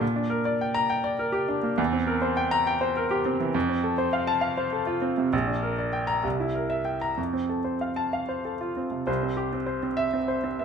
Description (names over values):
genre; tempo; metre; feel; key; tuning
classical, virtuoso piano study; 66 BPM (dotted quarters); 6/8; rubato; F major; A4 = 440 Hz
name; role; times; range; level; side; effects
clear grand piano; solo; 0.0-10.6 s; Bb1 to Bb5; -24 LUFS; equal; none
room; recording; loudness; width
moderate recital hall reverb, RT60 1.4 s; close, detailed microphones; -24 LUFS; side -6 dB against mid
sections
0.0-9.1 A section; 9.1-10.6 B section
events
none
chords
0.0 Gm/Bb; 1.8 C7/E; 3.5 F; 5.3 Gm/Bb; 6.2 C7; 7.2 F; 9.1 C